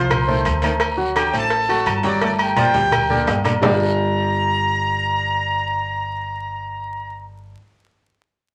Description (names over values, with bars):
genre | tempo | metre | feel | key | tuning
latin, salsa | 171 BPM | 4/4 | straight | G minor | A4 = 445 Hz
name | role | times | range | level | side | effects
bright trumpet section | melody | 0.0-7.2 s | G4 to D6 | -24 LUFS | equal | none
edgy baritone saxophone | second line | 0.0-3.7 s | D3 to A3 | -29 LUFS | equal | none
warm grand piano | accompaniment | 0.0-7.5 s | F3 to G5 | -27 LUFS | equal | none
upright bass | bass | 0.0-7.5 s | G1 to D2 | -28 LUFS | equal | none
agogo bells and timbales | percussion | 0.1-3.7 s | none | -26 LUFS | equal | none
congas | percussion | 0.1-3.7 s | none | -30 LUFS | equal | none
cowbell and bongos | percussion | 0.1-3.7 s | none | -30 LUFS | equal | none
guiro | percussion | 0.1-3.7 s | none | -38 LUFS | equal | none
room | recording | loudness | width
wet club reverb, RT60 0.8 s | vinyl crackle | -19 LUFS | mono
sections
0.0-3.6 A section; 3.6-6.4 B section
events
drum fill 2.2-3.6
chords
0.0 F; 0.8 D7; 2.2 Gmadd9; 3.6 Gm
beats
0.11 0.46 | 0.81 1.16 1.51 1.86 | 2.22 2.57 2.92 3.27 | 3.62 3.97 4.32 4.67 | 5.02 5.37 5.72 6.07